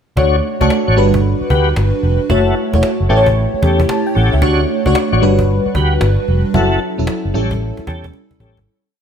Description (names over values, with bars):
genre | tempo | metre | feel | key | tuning
R&B, new jack swing | 113 BPM | 4/4 | swing 65% on 16ths | unclear | A4 = 439 Hz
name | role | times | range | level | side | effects
FM electric piano with soft pad layer | accompaniment | 0.2-8.7 s | F#3 to A5 | -16 LUFS | equal | chorus, phaser
tonewheel organ | stabs | 0.2-8.6 s | C#4 to C#5 | -20 LUFS | left 3 dB | chorus vibrato, slow rotary speaker, diffuse ambient delay
vintage muted fingered electric bass | bass | 0.2-8.7 s | E1 to E2 | -15 LUFS | equal | none
cajon | drums | 0.2-8.7 s | none | -23 LUFS | equal | none
room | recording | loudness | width
moderate plate reverb, RT60 1.1 s, digital ambience | dreamy mix soaked in reverb | -12 LUFS | side -8 dB against mid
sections
0.2-8.7 verse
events
fade-out 6.5-8.7; drum fill 8.1-8.7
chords
0.2 Dmaj7; 1.0 Gmaj7; 2.3 F#m7; 3.1 A7; 4.4 Dmaj7; 5.2 Gmaj7; 6.5 F#m7; 7.3 A7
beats
| 0.17 0.70 1.24 1.77 | 2.30 2.83 3.36 3.89 | 4.42 4.95 5.48 6.01 | 6.55 7.08 7.61 8.14